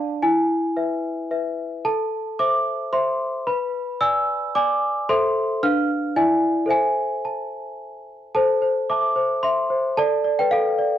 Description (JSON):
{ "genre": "classical, lullaby for celesta", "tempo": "111 BPM", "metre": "3/4", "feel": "straight", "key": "A minor", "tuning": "A4 = 441 Hz", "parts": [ { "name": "worn celesta", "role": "solo", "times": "0.0-11.0 s", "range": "D4 to F6", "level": "-20 LUFS", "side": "equal", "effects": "cassette tape" } ], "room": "light reverb, small room reverb", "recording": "home recording on cassette", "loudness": "-19 LUFS", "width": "side -11 dB against mid", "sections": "0.0-8.3 A section; 8.3-11.0 A section", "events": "none", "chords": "0.2 E; 1.9 Am; 3.5 G#dim/B; 5.1 Am; 5.6 Bdim/D; 6.2 E7; 6.7 Am; 10.0 Dm/A" }